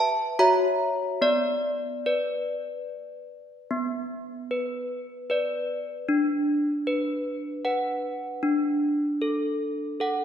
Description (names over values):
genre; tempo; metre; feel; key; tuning
classical, tune for handbells; 75 BPM; 3/4; uneven beats; B minor; A4 = 440 Hz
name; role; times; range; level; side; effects
desk bells; solo; 0.0-10.2 s; B3 to A#5; -24 LUFS; equal; none
room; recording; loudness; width
wet concert hall reverb, RT60 1.8 s; heard from further back in the room; -24 LUFS; side -9 dB against mid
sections
0.0-3.7 A section; 3.7-10.2 A section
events
none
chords
0.4 F#7; 1.2 Bm; 6.1 Bm/D; 8.4 D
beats
0.39 | 1.22 2.05 2.88 | 3.71 4.51 5.30 | 6.09 6.87 7.66 | 8.44 9.23 10.01